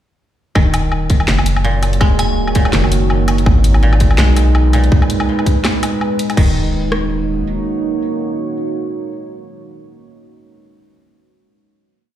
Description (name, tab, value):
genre	half-time drum and bass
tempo	165 BPM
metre	4/4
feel	swing 57% on 16ths, half-time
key	Eb minor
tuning	A4 = 440 Hz
part	deep dark ambient pad	sustained chords	1.2-10.0 s	Ab3 to Db5	-20 LUFS	right 3 dB	chorus, built-in reverb, sidechain pumping
part	koto	arpeggios	0.6-9.8 s	Bb2 to Ab3	-22 LUFS	equal	ping-pong delay
part	saturated sub bass	bass	0.6-7.4 s	Eb1 to Cb2	-14 LUFS	equal	none
part	drum and bass drum kit	drums	0.6-7.0 s	kick drum, rim click	-12 LUFS	equal	overdrive
part	drum and bass drum kit	drums	0.6-6.5 s	crash cymbal, hi-hat, snare drum, woodblock	-21 LUFS	left 1 dB	overdrive
part	glassy synth bell	melody	2.2-2.5 s	Ab5	-27 LUFS	equal	chorus, ping-pong delay
room	light reverb, digital ambience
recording	played on a big sound system in a bare room, large studio reverb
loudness	-12 LUFS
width	side -12 dB against mid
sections	0.6-6.4 drop; 6.4-9.3 final chord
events	drop 0.6-6.4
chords	0.6 Ebm7; 3.5 Abm; 6.4 Ebm7